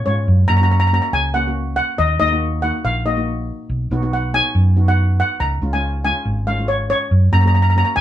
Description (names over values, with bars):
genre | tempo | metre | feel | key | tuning
calypso | 140 BPM | 4/4 | swing 54% on 16ths | F# major | A4 = 439 Hz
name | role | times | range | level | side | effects
steel pan | melody | 0.0-8.0 s | C#5 to A#5 | -19 LUFS | left 1 dB | none
hollow-body short-scale fingered electric bass | bass | 0.0-8.0 s | G#1 to G#2 | -17 LUFS | equal | none
steel pan | accompaniment | 0.1-8.0 s | G#3 to G#4 | -26 LUFS | left 1 dB | none
room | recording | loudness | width
moderate studio ambience, RT60 0.5 s | band playing live in one room, nothing above 10.4 kHz | -15 LUFS | side -12 dB against mid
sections
0.3-8.0 A section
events
none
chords
0.3 F#; 2.0 D#m; 3.7 B; 5.4 C#; 7.1 F#